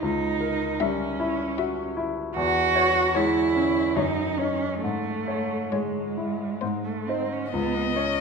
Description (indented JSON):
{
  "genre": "classical, slow romantic movement for piano trio",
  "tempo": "64-78 BPM",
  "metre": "3/4",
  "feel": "rubato",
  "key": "C# minor",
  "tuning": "A4 = 441 Hz",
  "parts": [
    { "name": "warm cello", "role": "second line", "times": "0.0-8.2 s", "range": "G#3 to F#4", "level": "-25 LUFS", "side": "right 4 dB", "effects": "none" },
    { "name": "clear grand piano", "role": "accompaniment", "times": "0.0-8.2 s", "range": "C#2 to C#5", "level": "-27 LUFS", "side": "left 3 dB", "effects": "none" },
    { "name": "warm violin", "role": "melody", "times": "0.8-8.2 s", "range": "B#4 to E5", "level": "-31 LUFS", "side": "left 10 dB", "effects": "none" }
  ],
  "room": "wet recital hall reverb, RT60 1.7 s",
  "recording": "minimal, uncompressed stereo recording",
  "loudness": "-23 LUFS",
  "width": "side -5 dB against mid",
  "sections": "0.0-8.2 A section",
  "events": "none",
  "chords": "0.0 C#dim7; 2.4 C#m/E; 4.0 D#m7/F#; 4.8 C#m/G#; 6.6 G#; 7.5 N.C."
}